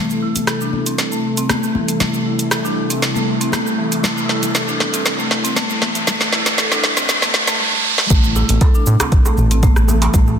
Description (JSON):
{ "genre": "afro house", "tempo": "118 BPM", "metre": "4/4", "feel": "straight", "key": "A minor pentatonic", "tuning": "A4 = 440 Hz", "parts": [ { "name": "warm analog pad", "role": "sustained chords", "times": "0.0-10.4 s", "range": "C3 to A4", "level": "-26 LUFS", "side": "right 1 dB", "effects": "chorus, sidechain pumping" }, { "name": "marimba with medium hard mallets", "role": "arpeggios", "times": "0.0-10.3 s", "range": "E3 to A4", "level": "-22 LUFS", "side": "left 1 dB", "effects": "sidechain pumping, low-pass filter, ping-pong delay" }, { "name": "riser", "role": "sound effects", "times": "1.7-8.1 s", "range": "none", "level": "-24 LUFS", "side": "right 2 dB", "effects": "none" }, { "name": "afro-pop drum kit", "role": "drums", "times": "0.1-10.4 s", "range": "hi-hat, rim click, shaker, snare drum, toms", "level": "-18 LUFS", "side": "right 1 dB", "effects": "studio reverb, soft clipping on snare" }, { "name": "congas", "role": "percussion", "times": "0.4-10.2 s", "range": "none", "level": "-25 LUFS", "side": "left 5 dB", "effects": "none" }, { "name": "round analog bass", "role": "bass", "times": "8.1-10.4 s", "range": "A1 to A2", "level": "-16 LUFS", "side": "equal", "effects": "sidechain pumping" }, { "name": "electronic kick drum", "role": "drums", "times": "8.1-10.2 s", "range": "none", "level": "-13 LUFS", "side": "equal", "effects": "overdrive, studio reverb" }, { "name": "djembe", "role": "percussion", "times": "8.4-10.4 s", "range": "none", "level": "-26 LUFS", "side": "right 3 dB", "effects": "none" } ], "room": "moderate lush hall reverb, RT60 1.8 s, digital ambience", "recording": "dense, heavily limited modern master, high-pass filter", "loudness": "-14 LUFS", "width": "side -8 dB against mid", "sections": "0.0-8.1 A section; 8.1-10.4 B section", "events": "build-up 0.0-8.1; drum fill 0.0-7.6, 7.6-8.1; filter sweep on marimba 0.0-8.1; filter sweep 0.0-8.1; riser 1.7-8.1; drop 8.1-10.4", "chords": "0.0 Am7" }